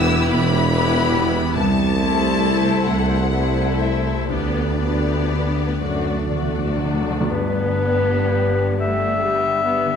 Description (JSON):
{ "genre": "classical, slow romantic movement for symphony orchestra", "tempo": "39-48 BPM (dotted quarters)", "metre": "6/8", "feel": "rubato", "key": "G major", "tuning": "A4 = 440 Hz", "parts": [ { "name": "dark studio violin section", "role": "melody", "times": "0.0-10.0 s", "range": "G4 to E6", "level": "-27 LUFS", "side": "left 5 dB", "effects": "none" }, { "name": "rich studio violin section", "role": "second line", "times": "0.0-10.0 s", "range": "B3 to D5", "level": "-29 LUFS", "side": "left 5 dB", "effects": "none" }, { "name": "rich studio viola section", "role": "accompaniment", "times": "0.0-10.0 s", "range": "G3 to E4", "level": "-25 LUFS", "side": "right 1 dB", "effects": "none" }, { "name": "concert harp", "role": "arpeggios", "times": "0.0-10.0 s", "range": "E2 to E5", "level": "-27 LUFS", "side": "left 9 dB", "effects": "none" }, { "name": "mellow tuba", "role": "bass", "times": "0.0-7.1 s", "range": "E1 to D2", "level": "-24 LUFS", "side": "right 3 dB", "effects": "none" }, { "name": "warm studio cello section", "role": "bass", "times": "0.0-10.0 s", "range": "C2 to G2", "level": "-25 LUFS", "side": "right 2 dB", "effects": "none" }, { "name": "warm studio double bass section", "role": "bass", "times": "0.0-10.0 s", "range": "E1 to D2", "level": "-26 LUFS", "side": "right 1 dB", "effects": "none" }, { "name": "timpani", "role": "percussion", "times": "5.8-7.3 s", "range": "D3", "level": "-27 LUFS", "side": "equal", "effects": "none" }, { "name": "clear clarinet", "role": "second line", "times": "7.3-10.0 s", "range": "B4 to E5", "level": "-20 LUFS", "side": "left 4 dB", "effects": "none" }, { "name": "dark French horn section", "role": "sustained chords", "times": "7.3-10.0 s", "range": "G3 to D4", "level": "-28 LUFS", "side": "left 3 dB", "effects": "none" } ], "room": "wet scoring stage reverb, RT60 1.7 s", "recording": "none", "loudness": "-17 LUFS", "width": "side -7 dB against mid", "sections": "0.0-7.3 A section; 7.3-10.0 B section", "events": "timpani fill 5.8-7.3", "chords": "0.0 Em; 1.6 Am/C; 4.3 G/D; 5.8 D; 7.3 G" }